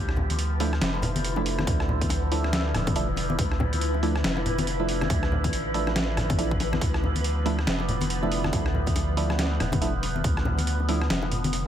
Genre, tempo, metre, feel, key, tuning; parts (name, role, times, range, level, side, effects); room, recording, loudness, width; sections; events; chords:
deep dubstep; 140 BPM; 4/4; swing 60% on 16ths, half-time; D dorian; A4 = 441 Hz
overtone-sweeping drone; sustained chords; 0.0-11.7 s; D3 to E4; -32 LUFS; left 1 dB; chorus, built-in reverb, phaser
soft dub sub bass; bass; 0.0-11.7 s; E1 to D2; -28 LUFS; equal
flickering grainy texture; texture; 0.4-11.7 s; B4; -36 LUFS; right 1 dB; built-in reverb
trip hop sampler-style drum kit; drums; 0.1-11.6 s; hi-hat, rim click, snare drum; -31 LUFS; right 1 dB; small room ambience
congas and bongos; percussion; 0.2-11.6 s; -31 LUFS; left 2 dB; dub echo
percussive organ stab; stabs; 0.6-11.0 s; F3 to E4; -32 LUFS; right 3 dB; chorus, phaser, dub echo
electronic kick drum; drums; 1.7-10.3 s; -28 LUFS; equal; small room ambience
light reverb, digital ambience; -23 LUFS; side -10 dB against mid
0.0-11.7 A section
0.0 Dmadd9